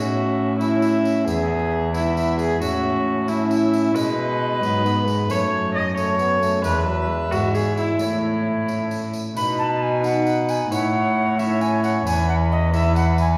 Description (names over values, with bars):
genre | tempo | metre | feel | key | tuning
classical, renaissance-style consort dance | 89 BPM (dotted quarters) | 6/8 | straight | B mixolydian | A4 = 440 Hz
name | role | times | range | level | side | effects
alto recorder | melody | 0.0-13.4 s | C#5 to B5 | -30 LUFS | equal | none
rich viola | second line | 0.0-13.4 s | E4 to D#5 | -26 LUFS | equal | none
bright trombone | accompaniment | 0.0-13.4 s | F#3 to E4 | -30 LUFS | equal | none
concert harp | accompaniment | 0.0-13.4 s | E2 to G#4 | -31 LUFS | equal | none
rich cello | bass | 0.0-13.4 s | E2 to B2 | -26 LUFS | equal | none
tambourine | percussion | 0.6-13.4 s | none | -41 LUFS | equal | none
room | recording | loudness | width
wet recital hall reverb, RT60 1.5 s | recorded in a church or concert hall, vinyl crackle | -21 LUFS | mono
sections
0.0-9.4 A section; 9.4-13.4 A section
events
none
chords
0.0 A; 1.3 E; 2.6 A; 4.0 B; 5.3 F#m; 6.6 E; 8.0 A; 9.4 B; 10.7 A; 12.1 E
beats
0.60 | 1.27 1.94 | 2.61 3.28 | 3.96 4.63 | 5.30 5.97 | 6.64 7.32 | 8.00 8.68 | 9.36 10.03 | 10.71 11.38 | 12.05 12.73